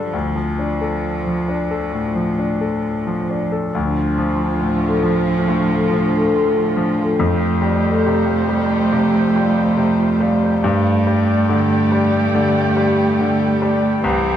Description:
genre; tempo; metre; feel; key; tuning
neoclassical piano and strings; 65-72 BPM; 4/4; rubato; D minor; A4 = 440 Hz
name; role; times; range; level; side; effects
rich cello; second line; 0.0-14.4 s; E3 to A3; -20 LUFS; right 3 dB; none
bright grand piano; accompaniment; 0.0-14.4 s; C2 to A4; -18 LUFS; left 2 dB; none
dark chamber string section; sustained chords; 3.7-14.4 s; G3 to E5; -26 LUFS; right 1 dB; none
concert harp; arpeggios; 3.7-14.4 s; C4 to A5; -23 LUFS; left 1 dB; analog delay
room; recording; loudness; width
wet recital hall reverb, RT60 1.6 s; dark, warm production, nothing above 10.8 kHz; -15 LUFS; side -10 dB against mid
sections
0.0-3.7 A section; 3.7-14.4 B section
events
none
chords
0.1 Dm; 7.2 Fadd9; 10.6 Gsus2

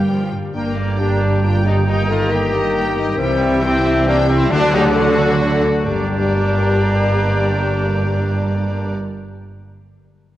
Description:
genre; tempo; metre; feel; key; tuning
cinematic, heroic adventure film score; 135 BPM; 3/4; straight; G minor; A4 = 442 Hz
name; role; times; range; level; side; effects
rich studio violin section; melody; 0.0-8.9 s; D5 to G5; -30 LUFS; left 3 dB; none
clear oboe; second line; 0.0-8.9 s; G4 to G5; -29 LUFS; equal; none
small flute group; second line; 0.0-8.9 s; G5 to Bb5; -31 LUFS; right 1 dB; none
warm symphonic violin section; second line; 0.0-8.9 s; G4 to G5; -35 LUFS; left 2 dB; none
mellow French horn section; sustained chords; 0.0-8.9 s; C4 to Bb4; -22 LUFS; left 3 dB; none
warm trombone section; sustained chords; 0.0-8.9 s; G2 to Bb3; -28 LUFS; right 3 dB; none
concert harp; arpeggios; 0.0-9.8 s; G2 to G5; -28 LUFS; left 5 dB; none
clear trumpet section; stabs; 0.0-8.9 s; G3 to F5; -24 LUFS; equal; none
rich symphonic cello section; bass; 0.0-8.9 s; G2 to G3; -21 LUFS; right 2 dB; none
rich symphonic viola section; accompaniment; 0.1-8.9 s; E3 to Bb3; -29 LUFS; equal; none
rich studio double bass section; bass; 0.1-8.9 s; G1 to G2; -22 LUFS; right 2 dB; none
warm clarinet; second line; 0.6-8.9 s; D5 to E5; -28 LUFS; left 3 dB; none
room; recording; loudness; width
moderate scoring stage reverb, RT60 2.2 s; worn, warbling old tape, cassette tape, warbly pitch drift; -14 LUFS; side -14 dB against mid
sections
0.5-5.8 A section; 5.8-8.5 B section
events
none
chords
0.0 Gm7; 0.5 Gm; 1.9 Eb/G; 3.2 C; 4.5 D; 5.8 Gm

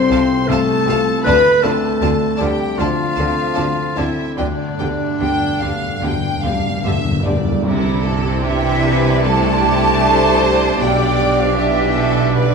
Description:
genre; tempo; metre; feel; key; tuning
cinematic, emotional film score for orchestra; 76 BPM; 4/4; uneven beats, rubato; C major; A4 = 439 Hz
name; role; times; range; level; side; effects
warm studio violin section; melody; 0.0-12.5 s; D5 to C6; -26 LUFS; left 3 dB; none
warm clarinet; second line; 0.0-12.5 s; D4 to C5; -23 LUFS; left 1 dB; none
felt-muted upright piano; accompaniment; 0.0-12.5 s; B1 to A4; -22 LUFS; left 3 dB; none
mellow French horn section; sustained chords; 0.0-12.5 s; D3 to B4; -21 LUFS; left 1 dB; none
rich studio violin section; second line; 0.1-12.5 s; E4 to A5; -24 LUFS; left 1 dB; none
rich studio viola section; accompaniment; 0.1-12.5 s; F3 to G4; -26 LUFS; left 1 dB; none
clear studio cello section; bass; 0.1-12.5 s; B2 to D3; -25 LUFS; right 5 dB; none
rich studio double bass section; bass; 0.1-12.5 s; B1 to D2; -23 LUFS; right 3 dB; none
timpani; percussion; 4.4-8.8 s; G2 to C3; -22 LUFS; equal; none
mellow cor anglais; second line; 7.7-12.5 s; D5; -26 LUFS; right 5 dB; none
large flute ensemble; second line; 8.4-12.5 s; D5 to A5; -20 LUFS; right 4 dB; none
room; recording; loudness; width
wet scoring stage reverb, RT60 1.6 s; minimal, uncompressed stereo recording; -14 LUFS; side -5 dB against mid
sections
0.0-7.6 A section; 7.6-12.5 B section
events
timpani fill 4.4-7.6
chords
0.0 F/C; 1.3 Dm7; 4.4 G/D; 7.6 Cadd9; 10.8 G/B

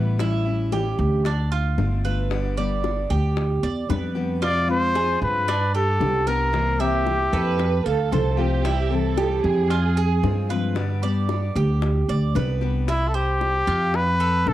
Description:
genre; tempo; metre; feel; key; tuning
latin, Cuban son and guajira; 114 BPM; 4/4; straight; C major; A4 = 441 Hz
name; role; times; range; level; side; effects
picked steel-string acoustic guitar; accompaniment; 0.0-12.9 s; C3 to G4; -29 LUFS; left 7 dB; cassette tape
Cuban tres; arpeggios; 0.0-14.5 s; D4 to F5; -28 LUFS; right 6 dB; cassette tape, plate reverb
upright bass; bass; 0.0-14.5 s; G1 to G2; -23 LUFS; equal; none
bongos; percussion; 0.2-14.5 s; none; -32 LUFS; left 10 dB; none
breathy trumpet; melody; 4.4-7.9, 12.9-14.5 s; E4 to D5; -22 LUFS; left 1 dB; cassette tape, plate reverb
dark studio violin section; second line; 7.3-10.5 s; G4 to B4; -27 LUFS; right 8 dB; cassette tape, plate reverb
room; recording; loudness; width
light reverb; home recording on cassette; -20 LUFS; side -14 dB against mid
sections
0.0-12.9 A section; 12.9-14.5 B section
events
none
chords
0.2 A7; 1.3 Dm; 2.3 G; 4.4 Fm; 5.5 G; 6.5 C7; 7.6 F; 8.7 C; 9.7 Fm; 10.8 G; 12.9 C; 13.9 F

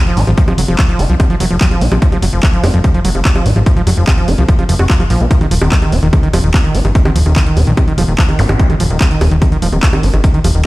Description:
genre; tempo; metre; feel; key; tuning
psychedelic trance; 146 BPM; 4/4; straight; F minor; A4 = 441 Hz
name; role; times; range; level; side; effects
overdriven acid bass; riff; 0.1-10.6 s; Eb3 to Gb4; -17 LUFS; equal; auto-pan, sidechain pumping, ping-pong delay
techno drum kit; drums; 0.1-10.6 s; bongos, handclaps, hi-hat; -19 LUFS; equal; overdrive
fat analog bass; bass; 0.2-10.6 s; Eb1 to C2; -12 LUFS; equal; none
electronic kick drum; drums; 0.4-10.3 s; none; -11 LUFS; equal; overdrive
zap; sound effects; 8.4-8.5 s; none; -23 LUFS; left 1 dB; none
room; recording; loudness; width
digital ambience; played on a big sound system in a bare room, stone room reverb; -9 LUFS; side -19 dB against mid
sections
0.0-10.7 A section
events
none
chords
0.0 F5; 5.3 Eb5

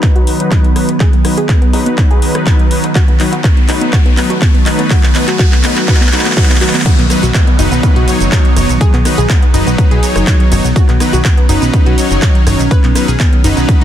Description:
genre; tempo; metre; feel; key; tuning
progressive house; 123 BPM; 4/4; straight; B mixolydian; A4 = 440 Hz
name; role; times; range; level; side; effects
evolving wavetable pad; sustained chords; 0.0-13.8 s; D#3 to C#4; -18 LUFS; right 1 dB; phaser, built-in reverb, sidechain pumping
wide unison pluck; arpeggios; 0.0-13.8 s; B3 to B4; -19 LUFS; equal; cassette tape, sidechain pumping, dub echo
soft supersaw; stabs; 0.0-13.8 s; F#3 to C#5; -18 LUFS; left 2 dB; sidechain pumping, low-pass filter, dub echo
big-room dance drum kit; drums; 0.0-13.8 s; crash cymbal, handclaps, hi-hat, ride cymbal, rim click, shaker; -20 LUFS; equal; sidechain pumping on hats, sidechain pumping on cymbals, sidechain pumping on perc
electronic kick drum; drums; 0.0-13.8 s; none; -10 LUFS; equal; overdrive
riser and downlifter; sound effects; 1.6-10.8 s; none; -24 LUFS; right 1 dB; none
plucky analog bass; bass; 0.2-13.8 s; F#1 to B1; -16 LUFS; equal; sidechain pumping, high-pass filter
room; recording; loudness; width
little or no reverb; dense, heavily limited modern master; -8 LUFS; side -10 dB against mid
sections
0.0-6.9 A section; 6.9-13.8 B section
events
build-up 0.0-6.9; drum fill 0.0-6.9; filter sweep on synth pluck 0.0-6.9; filter sweep on supersaw synth 0.0-6.9; filter sweep on ambient pad 0.0-6.9; riser 1.6-6.9; drop 6.9-13.8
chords
0.0 B

